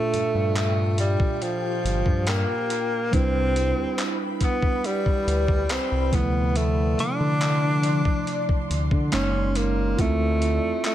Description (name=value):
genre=contemporary R&B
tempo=70 BPM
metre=4/4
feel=straight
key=C major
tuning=A4 = 441 Hz
part: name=breathy alto saxophone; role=melody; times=0.0-10.9 s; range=F3 to D4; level=-26 LUFS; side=equal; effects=dub echo
part: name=mellow tine electric piano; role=accompaniment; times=0.0-10.9 s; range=Bb2 to B4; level=-29 LUFS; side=right 5 dB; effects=dub echo
part: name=ethereal airy pad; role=sustained chords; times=0.1-10.9 s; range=F3 to C6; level=-33 LUFS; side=left 2 dB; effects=ensemble chorus, built-in reverb, phaser, sidechain pumping
part: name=smooth gliding synth bass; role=bass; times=0.1-10.7 s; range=F#1 to D3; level=-24 LUFS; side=left 1 dB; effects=none
part: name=dusty soul sampler-style drum kit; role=drums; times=0.1-10.9 s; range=handclaps, hi-hat, kick drum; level=-27 LUFS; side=equal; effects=dub echo
room=digital ambience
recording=echo-heavy mix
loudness=-21 LUFS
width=side -12 dB against mid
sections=0.0-10.9 A section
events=none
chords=0.0 Gm7; 3.1 Cmaj7; 6.1 Dm7; 9.1 F#6; 10.0 Dm7